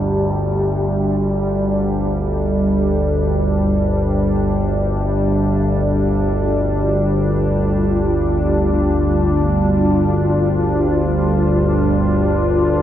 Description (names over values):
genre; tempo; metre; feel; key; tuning
dark ambient drone; free time; none; none; unclear; A4 = 440 Hz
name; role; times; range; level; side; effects
deep dark ambient pad; sustained chords; 0.0-12.8 s; G3 to G4; -18 LUFS; equal; chorus, built-in reverb
overtone-sweeping drone; drone; 0.0-12.8 s; G1 to D2; -18 LUFS; equal; chorus, built-in reverb
room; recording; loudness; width
wet huge ambient reverb, RT60 7.5 s; dark, warm production; -15 LUFS; side -11 dB against mid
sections
0.0-12.8 A section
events
none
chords
0.0 G5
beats
free time